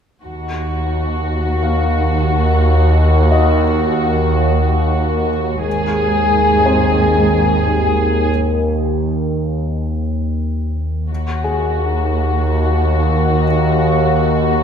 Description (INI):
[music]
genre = cinematic, suspense film score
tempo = free time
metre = none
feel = none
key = Eb dorian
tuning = A4 = 440 Hz
[part]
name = muted studio violin section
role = melody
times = 0.2-14.6 s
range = Gb4 to Ab4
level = -19 LUFS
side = left 3 dB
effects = none
[part]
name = muted studio double bass section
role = bass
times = 0.2-14.6 s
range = Ab1 to Eb2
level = -21 LUFS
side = right 1 dB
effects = none
[part]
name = muted symphonic cello section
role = bass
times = 0.2-14.6 s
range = Eb2 to Ab2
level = -20 LUFS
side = right 2 dB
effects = none
[part]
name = analog drone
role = drone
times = 1.3-14.6 s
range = Eb2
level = -17 LUFS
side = equal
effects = chorus, phaser
[part]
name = felt-muted upright piano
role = texture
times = 1.6-14.6 s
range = C4 to Ab5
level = -26 LUFS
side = left 1 dB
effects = none
[sound]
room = wet concert hall reverb, RT60 1.8 s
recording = minimal, uncompressed stereo recording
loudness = -14 LUFS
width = side -7 dB against mid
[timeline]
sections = 0.2-11.1 A section; 11.1-14.6 B section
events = break 8.3-11.1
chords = 0.2 Ebm; 5.7 Ab; 11.1 Ebm